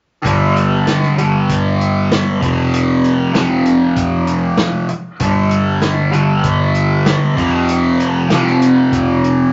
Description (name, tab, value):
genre	psychedelic rock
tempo	97 BPM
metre	4/4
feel	straight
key	unclear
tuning	A4 = 436 Hz
part	fuzz guitar	riff	0.2-9.5 s	F2 to G3	-15 LUFS	equal	distortion, phaser
part	vintage drum kit	drums	0.2-9.4 s	hi-hat, kick drum, snare drum	-23 LUFS	equal	none
part	vintage muted picked electric bass	bass	0.3-9.5 s	F1 to G1	-27 LUFS	equal	none
room	moderate studio reverb, RT60 0.7 s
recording	vinyl crackle, nothing above 7.6 kHz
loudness	-14 LUFS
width	mono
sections	0.3-9.5 A section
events	none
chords	0.3 G5; 2.4 F5; 5.2 G5; 7.4 F5